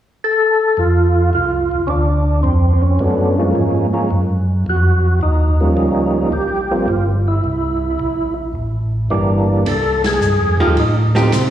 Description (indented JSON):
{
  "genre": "soul jazz organ trio",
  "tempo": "108 BPM",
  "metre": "4/4",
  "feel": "swing 69% on 8ths",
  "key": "unclear",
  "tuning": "A4 = 440 Hz",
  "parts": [
    { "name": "percussive tonewheel organ", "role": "melody", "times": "0.2-11.5 s", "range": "E3 to A4", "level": "-17 LUFS", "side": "equal", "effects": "slow rotary speaker, overdrive, chorus vibrato, slapback echo" },
    { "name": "mellow tonewheel organ", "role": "bass", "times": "0.8-11.5 s", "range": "G1 to C3", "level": "-16 LUFS", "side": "equal", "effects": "slow rotary speaker" },
    { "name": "open jazz drum kit", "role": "drums", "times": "9.7-11.5 s", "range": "hi-hat, kick drum, ride cymbal, snare drum", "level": "-23 LUFS", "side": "equal", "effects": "slapback echo" },
    { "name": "archtop guitar, miked and amplified", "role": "accompaniment", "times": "10.6-11.3 s", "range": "F3 to G4", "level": "-18 LUFS", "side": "right 2 dB", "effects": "slapback echo" }
  ],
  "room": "light reverb, small room ambience",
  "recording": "live gig heard through the venue's PA, recital hall reverb, small room reverb",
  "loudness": "-14 LUFS",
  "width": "side -11 dB against mid",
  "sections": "0.8-9.7 A section; 9.7-11.5 B section",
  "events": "band accent 9.9",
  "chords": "0.0 N.C.; 0.8 F5; 3.0 Gbmaj7; 5.2 Eb7; 7.4 C7; 9.7 F9"
}